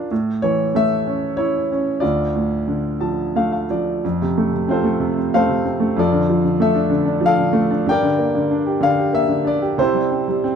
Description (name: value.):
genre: classical, lyrical solo piano.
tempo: 94 BPM.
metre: 3/4.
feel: rubato.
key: D minor, F major from 4.0 s.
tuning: A4 = 440 Hz.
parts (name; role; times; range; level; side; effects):
clear concert grand piano; solo; 0.0-10.6 s; D2 to A5; -16 LUFS; equal; none.
room: moderate studio reverb, RT60 0.6 s.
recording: dark, warm production.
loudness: -16 LUFS.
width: side -7 dB against mid.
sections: 0.0-4.0 A section; 4.0-10.6 B section.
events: grand piano fill 2.7-4.0.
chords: 0.1 A; 2.0 Dm; 4.0 F; 6.0 Dm/F; 7.9 Gm; 9.8 C.